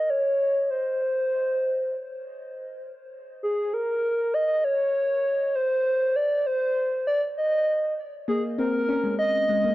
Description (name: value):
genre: IDM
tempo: 99 BPM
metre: 4/4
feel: straight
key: Bb minor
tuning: A4 = 439 Hz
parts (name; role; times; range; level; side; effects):
- warbly nostalgic lead; melody; 0.0-9.7 s; Ab4 to Eb5; -23 LUFS; equal; chorus, dub echo
- harp-like synth pluck; arpeggios; 8.3-9.7 s; Ab3 to Db4; -26 LUFS; left 2 dB; chorus
room: moderate plate reverb, RT60 2.7 s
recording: worn, warbling old tape, cassette tape, warbly pitch drift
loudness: -22 LUFS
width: side -16 dB against mid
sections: 0.0-9.7 A section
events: none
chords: 0.0 N.C.; 8.3 Bbm9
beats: 0.40 | 1.01 1.61 2.22 2.82 | 3.43 4.04 4.64 5.25 | 5.86 6.46 7.07 7.67 | 8.28 8.88 9.49